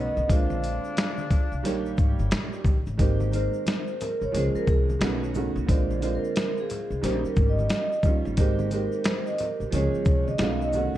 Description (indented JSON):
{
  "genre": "hip hop, jazz-hop",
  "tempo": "89 BPM",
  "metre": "4/4",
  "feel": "swing 62% on 16ths",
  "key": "Ab major",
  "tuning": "A4 = 435 Hz",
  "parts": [
    { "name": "vibraphone with soft mallets", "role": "melody", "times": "0.0-11.0 s", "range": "Ab4 to F#5", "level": "-30 LUFS", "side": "equal", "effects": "none" },
    { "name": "growling tenor saxophone", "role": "second line", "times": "0.0-2.3 s", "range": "B3 to D4", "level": "-35 LUFS", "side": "left 4 dB", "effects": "none" },
    { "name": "clear upright piano", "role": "accompaniment", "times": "0.0-11.0 s", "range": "D3 to Db5", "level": "-29 LUFS", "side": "right 3 dB", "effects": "none" },
    { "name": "upright bass", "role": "bass", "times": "0.0-11.0 s", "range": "G1 to Db2", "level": "-28 LUFS", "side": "left 1 dB", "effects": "none" },
    { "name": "tube shaker and congas", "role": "percussion", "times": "0.2-11.0 s", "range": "none", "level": "-39 LUFS", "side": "left 3 dB", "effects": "none" },
    { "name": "dusty soul sampler-style drum kit", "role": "drums", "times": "0.3-10.9 s", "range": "hi-hat, kick drum, shaker, snare drum", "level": "-24 LUFS", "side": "equal", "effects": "none" }
  ],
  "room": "light reverb",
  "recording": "dark, warm production",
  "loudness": "-23 LUFS",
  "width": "side -13 dB against mid",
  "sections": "0.0-3.0 A section; 3.0-11.0 B section",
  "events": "vibraphone solo 3.0-11.0",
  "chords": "0.3 Bb9; 1.6 Eb7; 3.0 Abmaj9; 4.3 Db6; 5.0 B9; 5.7 Bb9; 7.0 Eb7; 8.4 Abmaj9; 9.7 Db6; 10.4 B9"
}